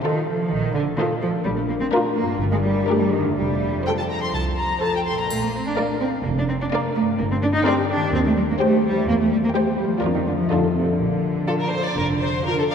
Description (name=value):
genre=cinematic, playful, whimsical film cue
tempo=126 BPM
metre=4/4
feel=straight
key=Bb major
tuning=A4 = 440 Hz
part: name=rich chamber violin section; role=melody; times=0.0-12.7 s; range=C5 to C6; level=-32 LUFS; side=left 3 dB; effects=none
part: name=clear chamber violin section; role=second line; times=0.0-12.7 s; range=A4 to D5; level=-29 LUFS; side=left 2 dB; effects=none
part: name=dark French horn section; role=sustained chords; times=0.0-12.6 s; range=D4 to C5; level=-29 LUFS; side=left 2 dB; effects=none
part: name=concert harp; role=arpeggios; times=0.0-12.7 s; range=F2 to Eb5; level=-28 LUFS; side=left 5 dB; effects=none
part: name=rich chamber cello section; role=bass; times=0.0-12.7 s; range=C3 to Eb4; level=-23 LUFS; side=right 2 dB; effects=none
part: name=rich chamber viola section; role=accompaniment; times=0.1-12.7 s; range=F4 to Bb4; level=-30 LUFS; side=right 1 dB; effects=none
part: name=warm chamber double bass section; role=bass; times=0.5-12.4 s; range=F1 to F2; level=-28 LUFS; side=right 2 dB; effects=none
part: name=triangle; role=percussion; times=5.3-6.2 s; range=none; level=-38 LUFS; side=left 1 dB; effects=none
room=wet church reverb, RT60 3.6 s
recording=none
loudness=-19 LUFS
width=side -7 dB against mid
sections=0.0-12.7 A section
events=none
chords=0.0 F7/Bb; 1.5 Bb; 2.4 Gm; 3.4 F; 5.3 Bb; 7.2 Gm; 8.1 Cm/Eb; 9.1 C7/E; 10.0 Bb/F; 10.5 F7; 11.0 Bb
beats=0.05 0.52 0.99 | 1.45 1.92 2.40 2.88 | 3.36 3.85 4.33 4.82 | 5.30 5.78 6.25 6.73 | 7.20 7.67 8.14 8.61 | 9.08 9.55 10.02 10.50 | 10.99 11.48 11.97 12.45